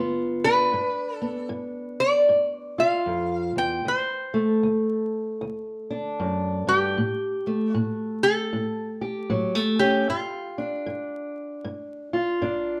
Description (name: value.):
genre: acoustic country blues, solo or duo.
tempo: 77 BPM.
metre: 4/4.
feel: swing 62% on 8ths.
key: unclear.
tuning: A4 = 439 Hz.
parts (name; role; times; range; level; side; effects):
fingerpicked steel-string acoustic guitar; accompaniment; 0.0-12.8 s; D2 to G4; -28 LUFS; equal; none.
lap resonator guitar; melody; 0.4-11.6 s; F4 to G5; -25 LUFS; equal; plate reverb.
room: moderate studio reverb, RT60 0.7 s.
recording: dark, warm production, vinyl crackle.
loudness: -25 LUFS.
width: mono.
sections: 0.0-12.8 A section.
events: none.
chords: 0.0 G7; 3.9 D7; 7.0 A7(no3); 10.1 G5.